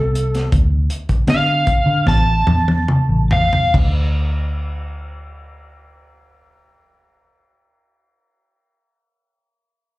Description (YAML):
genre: straight-eighth soul blues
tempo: 69-82 BPM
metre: 4/4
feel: straight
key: D minor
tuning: A4 = 440 Hz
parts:
  - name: crunchy overdriven guitar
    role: melody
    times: 0.0-3.7 s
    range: A4 to A5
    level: -18 LUFS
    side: equal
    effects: plate reverb, slapback echo
  - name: vintage muted fingered electric bass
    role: bass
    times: 0.0-8.2 s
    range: A1 to D3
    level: -17 LUFS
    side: equal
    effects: none
  - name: crunchy breakbeat drum kit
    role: drums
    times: 0.2-3.9 s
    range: crash cymbal, hi-hat, kick drum, snare drum, toms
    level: -19 LUFS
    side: equal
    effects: none
room: little or no reverb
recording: live gig heard through the venue's PA, club reverb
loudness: -14 LUFS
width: side -19 dB against mid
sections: 0.0-3.7 A section; 3.7-7.2 B section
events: slowing down 0.0-3.7; overdriven electric guitar solo 0.0-3.7; drum fill 2.1-3.7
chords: 0.0 Dm7; 2.1 A5; 3.7 N.C.